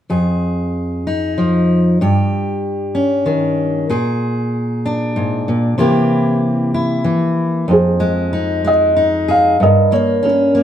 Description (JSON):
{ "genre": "folk", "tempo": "95 BPM", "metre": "3/4", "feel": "straight", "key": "F minor", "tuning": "A4 = 445 Hz", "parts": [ { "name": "fingerpicked steel-string acoustic guitar", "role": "accompaniment", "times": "0.1-10.6 s", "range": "F2 to Ab4", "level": "-14 LUFS", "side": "left 1 dB", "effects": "none" }, { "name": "felt-muted upright piano", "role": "melody", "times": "7.7-10.6 s", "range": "Db4 to F5", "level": "-14 LUFS", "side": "right 1 dB", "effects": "none" } ], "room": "wet stone room reverb, RT60 1.0 s", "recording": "band playing live in one room", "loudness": "-13 LUFS", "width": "side -10 dB against mid", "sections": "0.1-7.7 A section; 7.7-10.6 B section", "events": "none", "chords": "0.1 Fm7; 2.0 Eb7/G; 3.9 Bb7; 5.8 C7; 7.7 Fm7; 9.6 Gdim" }